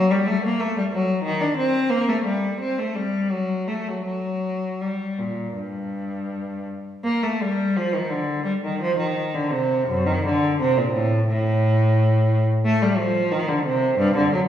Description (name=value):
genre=classical, baroque-style suite movement for unaccompanied cello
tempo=78-93 BPM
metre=4/4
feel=rubato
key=G minor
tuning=A4 = 440 Hz
part: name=rich cello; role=solo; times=0.0-14.4 s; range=F#2 to D4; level=-20 LUFS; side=equal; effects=none
room=wet recital hall reverb, RT60 1.5 s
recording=recorded in a church or concert hall, studio ambience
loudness=-20 LUFS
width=side -10 dB against mid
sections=0.0-7.1 A section; 7.1-14.5 B section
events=none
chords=none